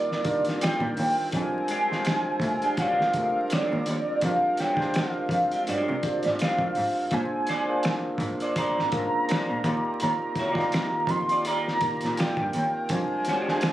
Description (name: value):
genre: R&B, neo-soul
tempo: 83 BPM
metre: 4/4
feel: swing 58% on 16ths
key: F dorian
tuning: A4 = 445 Hz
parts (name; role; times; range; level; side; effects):
- warm velvety synth lead; melody; 0.0-13.7 s; D5 to C6; -26 LUFS; right 1 dB; chorus, slapback echo
- barky tine electric piano; accompaniment; 0.0-13.7 s; G3 to Eb5; -31 LUFS; left 1 dB; overdrive
- chorused pulse-width pad; sustained chords; 0.0-13.7 s; Eb3 to C5; -38 LUFS; right 1 dB; none
- cloth-damped thuddy drum kit; drums; 0.1-13.7 s; finger snaps, hi-hat, kick drum, snare drum; -30 LUFS; equal; none
- semi-hollow electric guitar; second line; 0.6-13.6 s; Ab3 to D5; -30 LUFS; right 2 dB; wide subtle chorus, slapback echo
- rich cello; bass; 0.8-13.0 s; D2 to C3; -30 LUFS; right 1 dB; none
room: light reverb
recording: recorded on a phone in the room, studio ambience, vinyl crackle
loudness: -23 LUFS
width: side -14 dB against mid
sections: 0.0-13.7 A section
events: none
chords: 0.0 Ebmaj9; 1.3 Fm69; 7.1 Bb9; 9.6 Ebmaj9; 12.9 Fm69